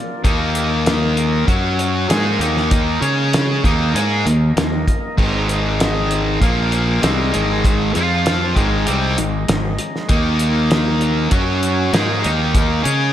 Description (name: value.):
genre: classic rock.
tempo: 98 BPM.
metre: 4/4.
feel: straight.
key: unclear.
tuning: A4 = 440 Hz.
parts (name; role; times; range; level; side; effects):
tonewheel organ; sustained chords; 0.0-13.1 s; Gb3 to F5; -26 LUFS; left 1 dB; slow rotary speaker.
distorted electric guitar; riff; 0.2-13.1 s; Ab2 to Db5; -19 LUFS; equal; overdrive, slapback echo.
fuzz fingered electric bass; bass; 0.2-13.1 s; Ab1 to Db3; -20 LUFS; equal; overdrive.
cloth-damped thuddy drum kit; drums; 0.2-13.0 s; crash cymbal, hi-hat, kick drum, snare drum; -20 LUFS; equal; none.
room: moderate lush hall reverb, RT60 2.8 s.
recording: big arena sound.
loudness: -15 LUFS.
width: side -11 dB against mid.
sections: 0.0-13.1 A section.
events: none.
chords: 0.2 Eb5; 1.5 Gb5; 2.1 Eb5; 3.0 Db5; 3.6 Eb5; 5.2 Ab5; 6.4 Bb5; 7.0 Ab5; 7.9 F5; 8.6 Ab5; 10.1 Eb5; 11.3 Gb5; 11.9 Eb5.